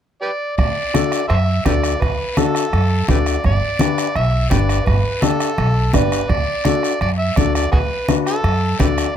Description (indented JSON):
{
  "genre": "latin, cumbia",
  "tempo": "168 BPM",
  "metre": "4/4",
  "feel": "straight",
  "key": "D major",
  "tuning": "A4 = 439 Hz",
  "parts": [
    { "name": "overdriven harmonica", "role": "melody", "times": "0.2-9.1 s", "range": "F#4 to E5", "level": "-22 LUFS", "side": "right 1 dB", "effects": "none" },
    { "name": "upright bass", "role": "bass", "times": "0.6-9.1 s", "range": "G1 to F#2", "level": "-18 LUFS", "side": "right 1 dB", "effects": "none" },
    { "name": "bombo", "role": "percussion", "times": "0.6-9.2 s", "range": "none", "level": "-22 LUFS", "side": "right 2 dB", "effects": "none" },
    { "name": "congas", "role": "percussion", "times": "0.6-9.0 s", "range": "none", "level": "-22 LUFS", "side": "left 2 dB", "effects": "none" },
    { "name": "guiro", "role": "percussion", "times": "0.6-9.2 s", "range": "none", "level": "-31 LUFS", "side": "left 6 dB", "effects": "none" },
    { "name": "warm upright piano", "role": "accompaniment", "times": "0.9-9.1 s", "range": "D4 to D5", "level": "-20 LUFS", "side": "left 5 dB", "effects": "none" }
  ],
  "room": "light reverb",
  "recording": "close, detailed microphones",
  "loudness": "-15 LUFS",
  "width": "side -9 dB against mid",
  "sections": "0.6-9.2 A section",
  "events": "none",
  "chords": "0.0 N.C.; 0.6 D; 3.4 G; 6.3 D"
}